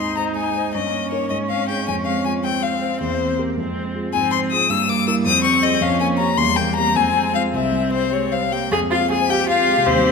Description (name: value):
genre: quick classical-period movement for piano quartet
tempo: 106 BPM (dotted quarters)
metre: 6/8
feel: rubato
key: F minor from 4.1 s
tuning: A4 = 440 Hz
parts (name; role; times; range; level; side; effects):
- clear violin; melody; 0.0-10.1 s; C5 to E6; -20 LUFS; left 8 dB; none
- rich cello; second line; 0.0-10.1 s; F3 to G4; -27 LUFS; right 6 dB; none
- clear viola; accompaniment; 0.0-10.1 s; Bb3 to Ab4; -24 LUFS; right 2 dB; none
- dark concert grand piano; accompaniment; 0.0-10.1 s; C2 to F5; -24 LUFS; equal; none
room: wet concert hall reverb, RT60 2.1 s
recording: none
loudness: -17 LUFS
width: side -5 dB against mid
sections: 0.0-8.7 A section; 8.7-10.1 B section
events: none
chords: 0.0 Ab; 0.7 Eb7/G; 1.3 Ab; 1.9 Fm; 3.0 C7/E; 3.6 Fm; 4.1 Fm/Ab; 4.7 Edim/G; 5.3 Fm; 5.8 Gm7b5/F; 6.4 C7/E; 7.0 Fm; 7.5 C; 8.7 Fm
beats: 0.17 | 0.74 1.31 | 1.88 2.44 | 3.01 3.57 | 4.13 4.70 | 5.26 5.81 | 6.38 6.95 | 7.53 8.12 | 8.72 9.30 | 9.86